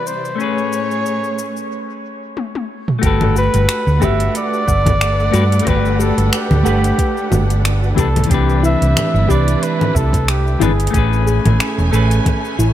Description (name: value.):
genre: sunset chillout.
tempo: 91 BPM.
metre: 4/4.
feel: swing 55% on 16ths.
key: G major.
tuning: A4 = 440 Hz.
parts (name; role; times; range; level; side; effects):
mellow flugelhorn; melody; 0.0-11.3 s; G4 to E5; -21 LUFS; equal; dub echo.
clean electric guitar; accompaniment; 0.0-12.6 s; E3 to F#5; -21 LUFS; moving between left 9 dB and right 6 dB; auto-pan, dub echo.
dark symphonic string section; sustained chords; 0.0-12.7 s; A2 to G#5; -26 LUFS; right 1 dB; none.
deep house drum kit; drums; 0.1-12.7 s; congas, finger snaps, hi-hat, shaker, toms; -21 LUFS; left 2 dB; overdrive, dub echo.
hollow-body short-scale fingered electric bass; bass; 3.0-12.7 s; E1 to G2; -15 LUFS; right 1 dB; none.
electronic kick drum; drums; 3.0-12.4 s; none; -19 LUFS; right 1 dB; overdrive.
soft round pluck; arpeggios; 3.4-12.7 s; E4 to F#5; -26 LUFS; left 4 dB; chorus, dub echo.
room: light reverb, digital ambience.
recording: echo-heavy mix.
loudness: -13 LUFS.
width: side -12 dB against mid.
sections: 0.0-3.0 A section; 3.0-12.7 B section.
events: break 1.7-3.0; drum fill 2.4-3.0.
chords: 0.4 Amaj9; 3.0 Gmaj9; 8.0 Cmaj9; 10.9 Amaj9.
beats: | 0.39 1.05 1.71 2.37 | 3.03 3.69 4.35 5.01 | 5.67 6.33 6.99 7.65 | 8.30 8.96 9.62 10.28 | 10.94 11.60 12.26.